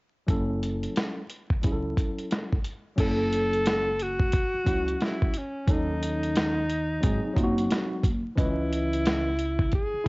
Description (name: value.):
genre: hip hop, jazz-hop.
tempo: 89 BPM.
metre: 4/4.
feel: swing 62% on 16ths.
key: F# dorian.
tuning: A4 = 441 Hz.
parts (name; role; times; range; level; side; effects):
tine electric piano; accompaniment; 0.3-10.1 s; E3 to D#5; -31 LUFS; equal; overdrive, fast stereo tremolo, cassette tape.
upright bass; bass; 0.3-10.0 s; F#1 to D#2; -30 LUFS; equal; none.
dusty soul sampler-style drum kit; drums; 0.3-10.1 s; crash cymbal, hi-hat, kick drum, snare drum; -26 LUFS; equal; cassette tape.
breathy alto saxophone; melody; 3.0-10.1 s; C#4 to A4; -28 LUFS; equal; cassette tape.
room: little or no reverb.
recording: home recording on cassette, vinyl crackle, nothing above 7.7 kHz.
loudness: -24 LUFS.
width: side -25 dB against mid.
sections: 0.3-3.0 A section; 3.0-10.1 B section.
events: none.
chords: 0.3 F#m7; 5.7 D#m7b5; 7.0 G#7; 8.4 C#m9.